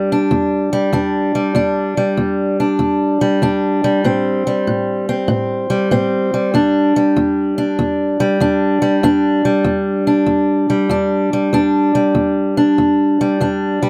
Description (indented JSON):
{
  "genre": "blues",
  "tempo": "96 BPM",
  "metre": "4/4",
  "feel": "swing 66% on 8ths",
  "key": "E minor",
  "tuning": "A4 = 439 Hz",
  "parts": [
    { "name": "fingerpicked steel-string acoustic guitar", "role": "solo", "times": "0.0-13.9 s", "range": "E2 to D4", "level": "-16 LUFS", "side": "equal", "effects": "none" }
  ],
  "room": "light reverb",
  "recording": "close, detailed microphones",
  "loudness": "-16 LUFS",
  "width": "mono",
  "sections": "0.0-13.9 A section",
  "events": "none",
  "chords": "0.0 Em7; 4.0 Am7; 6.5 Em7"
}